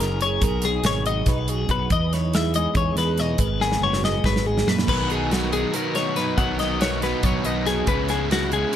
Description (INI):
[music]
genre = math rock and midwest emo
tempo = 282 BPM (eighths)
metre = 7/8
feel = straight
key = B major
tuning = A4 = 441 Hz
[part]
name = twelve-string electric guitar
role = accompaniment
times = 0.0-8.8 s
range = F#2 to B4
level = -28 LUFS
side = right 7 dB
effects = ensemble chorus
[part]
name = twelve-string electric guitar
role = arpeggios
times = 0.0-8.7 s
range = F#4 to F#5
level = -25 LUFS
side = left 7 dB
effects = tape echo
[part]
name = fuzz fingered electric bass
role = bass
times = 0.0-8.6 s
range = F#1 to F#2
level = -26 LUFS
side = equal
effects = overdrive
[part]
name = modern studio drum kit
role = drums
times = 0.0-8.8 s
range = crash cymbal, hi-hat, kick drum, snare drum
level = -25 LUFS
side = right 1 dB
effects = none
[part]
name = overdriven electric guitar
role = riff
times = 4.9-8.8 s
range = B2 to E4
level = -26 LUFS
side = right 1 dB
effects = none
[sound]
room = little or no reverb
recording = none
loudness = -20 LUFS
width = side -10 dB against mid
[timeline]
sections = 0.0-4.9 A section; 4.9-8.8 B section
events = drum fill 3.6-4.9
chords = 0.4 B69; 1.9 Emaj7; 3.4 G#m11; 4.9 Bmaj9; 7.9 C#m7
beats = 0.00 0.21 | 0.42 0.64 0.85 1.06 1.27 1.49 1.70 | 1.91 2.12 2.33 2.55 2.76 2.97 3.19 | 3.40 3.61 3.82 4.04 4.25 4.46 4.67 | 4.89 5.10 5.31 5.53 5.74 5.95 6.17 | 6.38 6.59 6.81 7.02 7.23 7.45 7.66 | 7.87 8.09 8.30 8.52 8.73